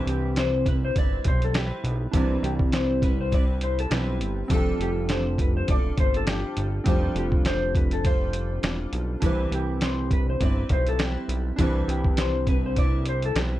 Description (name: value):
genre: indie pop, bedroom pop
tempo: 102 BPM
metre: 4/4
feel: swing 55% on 16ths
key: C major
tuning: A4 = 439 Hz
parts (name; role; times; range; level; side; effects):
- picked steel-string acoustic guitar; accompaniment; 0.0-13.6 s; C3 to B4; -30 LUFS; equal; analog chorus, warbly pitch drift
- warm analog keys; accompaniment; 0.0-13.6 s; C4 to D5; -34 LUFS; right 3 dB; chorus, cassette tape
- clean lap steel guitar; melody; 0.1-13.6 s; G4 to D5; -31 LUFS; left 4 dB; wide subtle chorus, plate reverb, analog delay
- fat analog bass; bass; 0.1-13.6 s; E1 to C2; -28 LUFS; equal; none
- lo-fi sampler-style drum kit; drums; 0.1-13.5 s; hi-hat, kick drum, snare drum; -24 LUFS; equal; none
room: light reverb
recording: cassette tape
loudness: -22 LUFS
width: side -14 dB against mid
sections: 0.0-13.6 A section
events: none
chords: 0.0 Cmaj7; 4.5 F69; 9.2 Cmaj7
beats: 0.36 0.95 1.54 | 2.13 2.73 3.32 3.91 | 4.50 5.09 5.68 6.27 | 6.86 7.45 8.04 8.64 | 9.23 9.82 10.41 11.00 | 11.59 12.18 12.77 13.36